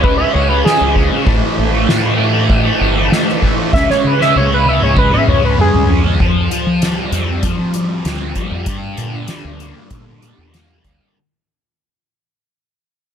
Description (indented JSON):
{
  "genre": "psychedelic rock",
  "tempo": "97 BPM",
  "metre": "4/4",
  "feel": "straight",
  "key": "unclear",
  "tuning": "A4 = 439 Hz",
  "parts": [
    { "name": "octave-doubled lead", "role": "melody", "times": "0.0-5.9 s", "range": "G#4 to E5", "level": "-16 LUFS", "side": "right 1 dB", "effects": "chorus, phaser, slapback echo" },
    { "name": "thick fuzz guitar", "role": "riff", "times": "0.0-11.2 s", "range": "G2 to C#4", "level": "-17 LUFS", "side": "left 1 dB", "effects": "distortion, phaser" },
    { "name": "deep dub fingered electric bass", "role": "bass", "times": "0.0-11.0 s", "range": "G1 to F3", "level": "-18 LUFS", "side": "equal", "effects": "none" },
    { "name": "soft-mallet drum kit", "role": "drums", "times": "0.0-11.0 s", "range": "crash cymbal, hi-hat, kick drum, ride cymbal, snare drum, toms", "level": "-17 LUFS", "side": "equal", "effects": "none" }
  ],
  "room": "light reverb, small room ambience",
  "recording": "none",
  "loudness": "-12 LUFS",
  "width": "side -8 dB against mid",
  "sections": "0.0-6.2 A section; 6.2-11.2 B section",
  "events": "analog synth lead solo 0.0-6.2; drum fill 3.7-6.2; fade-out 6.2-11.2",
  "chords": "0.0 C#5; 1.3 A5; 3.7 C#5; 6.2 Fsus2; 8.7 Gm",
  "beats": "0.04 0.65 | 1.27 1.89 2.50 3.12 | 3.73 4.35 4.96 5.58 | 6.20 6.81 7.43 8.05 | 8.67 9.29 9.91 10.53"
}